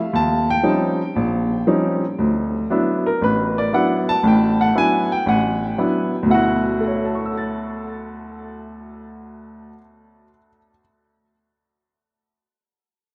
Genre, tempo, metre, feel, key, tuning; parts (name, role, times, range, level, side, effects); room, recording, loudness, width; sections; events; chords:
jazz; 117 BPM; 4/4; swing 69% on 8ths; D major; A4 = 440 Hz
warm baby grand piano; solo; 0.0-10.8 s; A1 to A6; -20 LUFS; equal; diffuse ambient delay
wet plate reverb, RT60 2.8 s; dreamy mix soaked in reverb; -19 LUFS; mono
0.0-6.3 A section; 6.3-10.4 B section
0.1 Eb13; 2.2 D69